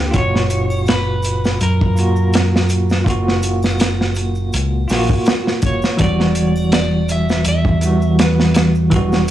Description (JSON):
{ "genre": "trip hop", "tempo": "82 BPM", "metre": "4/4", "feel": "swing 54% on 16ths", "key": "unclear", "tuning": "A4 = 438 Hz", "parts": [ { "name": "bell-like tine electric piano", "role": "accompaniment", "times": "0.0-9.3 s", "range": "A#2 to G4", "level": "-19 LUFS", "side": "equal", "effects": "tremolo, tape echo" }, { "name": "deep dub fingered electric bass", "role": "bass", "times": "0.0-9.3 s", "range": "E1 to F#2", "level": "-18 LUFS", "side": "equal", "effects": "none" }, { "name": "crunchy breakbeat drum kit", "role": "drums", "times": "0.1-9.3 s", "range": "hi-hat, kick drum, snare drum", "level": "-18 LUFS", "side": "equal", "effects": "none" }, { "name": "maracas and triangle", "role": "percussion", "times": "0.1-9.3 s", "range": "none", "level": "-37 LUFS", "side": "equal", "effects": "none" }, { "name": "electric slide guitar", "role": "melody", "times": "0.2-8.7 s", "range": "A#4 to E5", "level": "-24 LUFS", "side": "equal", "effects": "tape echo" } ], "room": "little or no reverb", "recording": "dry, gritty hardware recording, transformer saturation, cassette tape, studio reverb", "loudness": "-13 LUFS", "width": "side -12 dB against mid", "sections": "0.0-9.3 A section", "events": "none", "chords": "0.1 F#maj7; 6.0 Emadd9" }